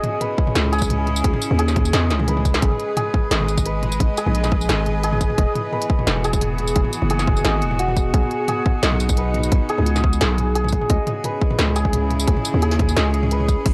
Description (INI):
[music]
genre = half-time drum and bass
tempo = 174 BPM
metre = 4/4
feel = half-time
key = unclear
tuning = A4 = 440 Hz
[part]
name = bright chamber cello section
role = sustained chords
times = 0.0-13.7 s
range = B2 to D#5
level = -31 LUFS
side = equal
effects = sidechain pumping
[part]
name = santur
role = arpeggios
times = 0.0-13.7 s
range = F#4 to D#5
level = -27 LUFS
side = equal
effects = analog delay
[part]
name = industrial drum kit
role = drums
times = 0.0-13.7 s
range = crash cymbal, hi-hat, snare drum, tambourine, toms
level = -27 LUFS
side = equal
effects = none
[part]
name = electronic kick drum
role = drums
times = 0.4-13.7 s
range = none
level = -22 LUFS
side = equal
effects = overdrive
[part]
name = growling 808-style bass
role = bass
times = 0.6-13.7 s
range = E1 to E2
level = -23 LUFS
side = equal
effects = none
[sound]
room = digital ambience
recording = dry, gritty hardware recording, transformer saturation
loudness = -20 LUFS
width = mono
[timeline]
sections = 0.0-13.7 A section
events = drop 0.0-13.7; drum fill 2.1-2.6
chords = 0.0 C#m; 2.6 G#m; 5.4 Eadd9; 8.1 B; 10.9 C#m